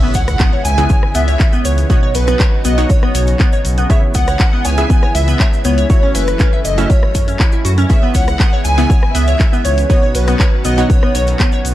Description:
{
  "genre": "progressive house",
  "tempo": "120 BPM",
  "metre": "4/4",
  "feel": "straight",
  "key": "C# minor",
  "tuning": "A4 = 440 Hz",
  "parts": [
    { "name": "plucky unison lead", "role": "melody", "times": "0.0-11.6 s", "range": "B4 to G#5", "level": "-21 LUFS", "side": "equal", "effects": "lush chorus, dub echo" },
    { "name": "warm studio violin section", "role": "second line", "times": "0.0-11.6 s", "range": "B4 to G#5", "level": "-26 LUFS", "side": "left 1 dB", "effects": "sidechain pumping, dub echo" },
    { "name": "lush unison pad", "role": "sustained chords", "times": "0.0-11.7 s", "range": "C#3 to F#4", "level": "-25 LUFS", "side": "equal", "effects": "chorus, vintage 12-bit sampler grit, sidechain pumping" },
    { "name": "glassy wavetable pluck", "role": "arpeggios", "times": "0.0-11.6 s", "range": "B3 to E5", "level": "-22 LUFS", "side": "left 1 dB", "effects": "chorus, phaser, sidechain pumping, dub echo" },
    { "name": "wide unison pluck", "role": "stabs", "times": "0.0-11.7 s", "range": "B2 to F#5", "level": "-23 LUFS", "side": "right 3 dB", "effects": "sidechain pumping" },
    { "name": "impact", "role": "sound effects", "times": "0.0-1.9 s", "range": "none", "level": "-24 LUFS", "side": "equal", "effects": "none" },
    { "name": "dark detuned saw bass", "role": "bass", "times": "0.1-11.7 s", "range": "F#1 to F#2", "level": "-15 LUFS", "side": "equal", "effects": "sidechain pumping" },
    { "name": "electronic kick drum", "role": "drums", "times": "0.1-11.5 s", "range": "none", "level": "-12 LUFS", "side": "equal", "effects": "none" },
    { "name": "pop drum kit", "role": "drums", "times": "0.1-11.7 s", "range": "handclaps, hi-hat, rim click", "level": "-24 LUFS", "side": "left 1 dB", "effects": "none" },
    { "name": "cabasa", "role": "percussion", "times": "0.1-11.7 s", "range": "none", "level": "-30 LUFS", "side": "right 2 dB", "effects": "none" }
  ],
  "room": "little or no reverb",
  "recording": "dark, warm production",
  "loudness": "-11 LUFS",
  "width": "side -14 dB against mid",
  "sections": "0.0-11.7 A section",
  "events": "impact 0.0-1.9",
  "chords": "0.0 C#m7; 1.9 Badd9; 3.9 C#m7; 5.9 F#m7; 7.9 C#m7; 9.9 Badd9",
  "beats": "0.40 0.90 1.40 | 1.90 2.40 2.90 3.40 | 3.90 4.40 4.90 5.40 | 5.90 6.40 6.90 7.40 | 7.90 8.40 8.90 9.40 | 9.90 10.40 10.90 11.40"
}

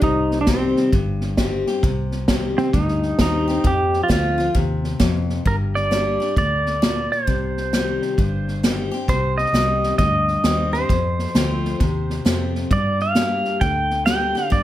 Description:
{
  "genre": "honky-tonk and classic country",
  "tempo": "132 BPM",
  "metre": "4/4",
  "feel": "swing 64% on 8ths",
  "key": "unclear",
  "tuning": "A4 = 439 Hz",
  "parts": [
    { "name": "pedal steel guitar", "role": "melody", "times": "0.0-14.6 s", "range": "C4 to G5", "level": "-21 LUFS", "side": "right 1 dB", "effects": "plate reverb" },
    { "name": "picked steel-string acoustic guitar", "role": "accompaniment", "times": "0.0-14.6 s", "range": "F2 to G4", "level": "-25 LUFS", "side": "left 4 dB", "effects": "none" },
    { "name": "vintage muted fingered electric bass", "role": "bass", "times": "0.0-14.6 s", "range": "G1 to G2", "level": "-24 LUFS", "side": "equal", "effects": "none" },
    { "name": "unplugged drum kit", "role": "drums", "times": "0.0-14.6 s", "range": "hi-hat, kick drum, snare drum", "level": "-22 LUFS", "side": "equal", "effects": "none" }
  ],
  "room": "moderate studio reverb, RT60 0.8 s",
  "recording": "none",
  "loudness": "-17 LUFS",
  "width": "side -13 dB against mid",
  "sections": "0.0-5.5 A section; 5.5-14.6 B section",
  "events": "none",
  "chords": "0.0 Cm; 3.6 F; 5.5 Gm; 7.3 Cm; 10.9 F; 12.7 Gm",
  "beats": "| 0.02 0.47 0.93 1.38 | 1.83 2.29 2.74 3.19 | 3.64 4.10 4.55 5.00 | 5.46 5.91 6.36 6.82 | 7.27 7.72 8.18 8.63 | 9.09 9.54 9.99 10.45 | 10.90 11.35 11.81 12.26 | 12.71 13.17 13.62 14.07 | 14.53"
}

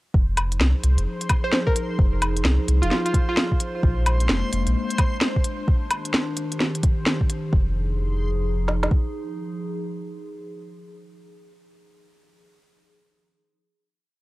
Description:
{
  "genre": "future garage",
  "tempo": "130 BPM",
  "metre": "4/4",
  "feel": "swing 63% on 16ths",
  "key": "F dorian",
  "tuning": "A4 = 440 Hz",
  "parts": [
    { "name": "warbly tape-like pad", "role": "sustained chords", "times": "0.1-11.5 s", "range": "Eb3 to Ab4", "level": "-31 LUFS", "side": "left 1 dB", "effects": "chorus, built-in reverb, vintage 12-bit sampler grit, sidechain pumping" },
    { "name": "soft dub sub bass", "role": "bass", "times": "0.1-4.7, 7.5-8.9 s", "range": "F1 to C2", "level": "-22 LUFS", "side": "equal", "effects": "tube saturation" },
    { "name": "organic electronic drum kit", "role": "drums", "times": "0.1-9.0 s", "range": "kick drum, snare drum", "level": "-20 LUFS", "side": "equal", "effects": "none" },
    { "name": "backwards swelling texture", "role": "texture", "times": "0.8-5.7 s", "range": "C5", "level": "-36 LUFS", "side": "right 1 dB", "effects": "built-in reverb" },
    { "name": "organic electronic drum kit", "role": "drums", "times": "0.4-7.4 s", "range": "hi-hat, snare drum, woodblock", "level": "-23 LUFS", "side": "equal", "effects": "none" },
    { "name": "glassy wavetable pluck", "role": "melody", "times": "1.4-3.6 s", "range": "F4 to C5", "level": "-28 LUFS", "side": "equal", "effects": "chorus, analog delay" }
  ],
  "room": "digital ambience",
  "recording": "dry, gritty hardware recording, cassette tape",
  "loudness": "-20 LUFS",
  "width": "side -19 dB against mid",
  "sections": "0.1-7.5 groove; 7.5-11.2 final chord",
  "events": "none",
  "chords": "0.1 Fm7; 3.8 Bb7; 5.7 Ebmaj7; 7.5 Fm7",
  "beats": "| 0.14 0.60 1.06 1.53 | 1.99 2.45 2.91 3.37 | 3.83 4.30 4.76 5.22 | 5.68 6.14 6.60 7.07 | 7.53 7.99 8.45 8.91 | 9.37 9.83 10.30 10.76"
}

